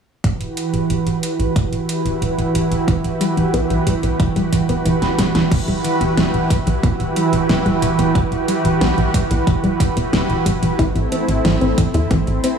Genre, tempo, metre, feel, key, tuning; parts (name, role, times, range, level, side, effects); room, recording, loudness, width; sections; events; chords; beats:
synthwave; 91 BPM; 4/4; straight; E minor; A4 = 438 Hz
lush unison pad; sustained chords; 0.2-12.6 s; E3 to B4; -19 LUFS; right 2 dB; chorus, sidechain pumping
tight sequencer bass; bass; 0.2-12.4 s; E1 to E2; -22 LUFS; right 1 dB
electronic kick drum; drums; 0.2-12.2 s; -19 LUFS; right 1 dB; overdrive
pop drum kit; drums; 0.2-12.6 s; crash cymbal, hi-hat, snare drum; -24 LUFS; right 1 dB; overdrive
soft round pluck; arpeggios; 2.9-12.6 s; E3 to E4; -22 LUFS; left 1 dB; chorus, cassette tape, digital delay
light reverb; studio ambience; -15 LUFS; side -7 dB against mid
0.2-5.5 A section; 5.5-12.6 B section
filter sweep on analog synth bass 0.2-5.5; filter sweep on analog synth pad 0.2-5.5; drum fill 5.0-5.5; filter sweep on synth arpeggio sound 5.5-12.6
0.2 Emadd9; 10.8 Am
| 0.24 0.90 1.56 2.22 | 2.88 3.54 4.20 4.86 | 5.52 6.17 6.83 7.49 | 8.15 8.81 9.47 10.13 | 10.79 11.45 12.11